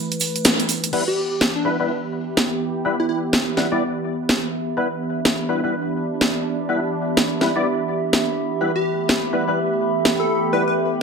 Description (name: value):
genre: bass house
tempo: 125 BPM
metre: 4/4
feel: swing 62% on 16ths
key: E minor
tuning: A4 = 440 Hz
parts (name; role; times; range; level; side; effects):
- sweeping resonant pad; sustained chords; 0.0-11.0 s; E3 to B4; -26 LUFS; right 1 dB; chorus, vintage 12-bit sampler grit
- house drum kit; drums; 0.1-10.2 s; crash cymbal, hi-hat, snare drum; -20 LUFS; equal; none
- egg shaker; percussion; 0.1-0.9 s; none; -27 LUFS; right 5 dB; none
- percussive organ stab; stabs; 0.9-10.6 s; G3 to D5; -24 LUFS; left 2 dB; ensemble chorus, ping-pong delay
- warbly tape-like pad; texture; 1.2-11.0 s; B3 to B5; -25 LUFS; right 2 dB; chorus, built-in reverb
- plucky unison lead; melody; 1.1-3.2, 8.8-10.7 s; D4 to B4; -25 LUFS; equal; ping-pong delay
room: wet digital room reverb, RT60 1.2 s, digital ambience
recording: none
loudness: -18 LUFS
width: side -5 dB against mid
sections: 0.9-11.0 A section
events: band accent 0.4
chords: 0.0 E5; 0.9 Em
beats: 0.45 | 0.93 1.41 1.89 2.37 | 2.85 3.33 3.81 4.29 | 4.77 5.25 5.73 6.21 | 6.69 7.17 7.65 8.13 | 8.61 9.09 9.57 10.05 | 10.53 11.01